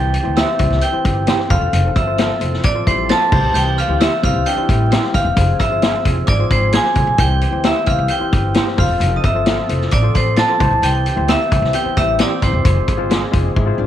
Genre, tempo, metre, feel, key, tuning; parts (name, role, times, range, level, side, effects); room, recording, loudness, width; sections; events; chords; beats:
uptempo 1960s-style soul; 132 BPM; 4/4; straight; C major; A4 = 438 Hz
vibraphone with hard mallets; melody; 0.0-13.8 s; C5 to A5; -20 LUFS; equal; slapback echo
glockenspiel with brass mallets; second line; 0.0-13.7 s; C6 to A6; -26 LUFS; right 13 dB
overdriven reed electric piano; accompaniment; 0.0-13.9 s; Eb4 to C5; -26 LUFS; left 10 dB
percussive tonewheel organ; sustained chords; 0.0-13.9 s; E3 to A4; -27 LUFS; right 1 dB; overdrive, chorus vibrato, slow rotary speaker
upright bass; bass; 0.0-13.9 s; E1 to D2; -18 LUFS; equal
vintage drum kit; drums; 0.1-13.7 s; crash cymbal, hi-hat, kick drum, snare drum; -18 LUFS; left 2 dB
electric guitar through a small old amp; stabs; 0.4-13.2 s; E4 to C5; -24 LUFS; right 10 dB; analog chorus
vintage hollow-body jazz guitar; riff; 2.9-5.3, 11.7-13.9 s; E3 to G4; -28 LUFS; left 8 dB
little or no reverb; 1960s-style stereo with parts hard left and right, vinyl crackle; -13 LUFS; side -11 dB against mid
0.0-13.9 A section
drum fill 13.6-13.9
0.0 C; 1.5 F; 3.3 C; 5.4 Fm; 7.2 C; 8.8 F; 10.6 C; 12.6 Fm
0.36 0.82 1.27 | 1.73 2.18 2.64 3.09 | 3.55 4.00 4.46 4.91 | 5.37 5.83 6.28 6.74 | 7.19 7.65 8.10 8.56 | 9.01 9.47 9.92 10.38 | 10.83 11.29 11.74 12.20 | 12.65 13.10 13.56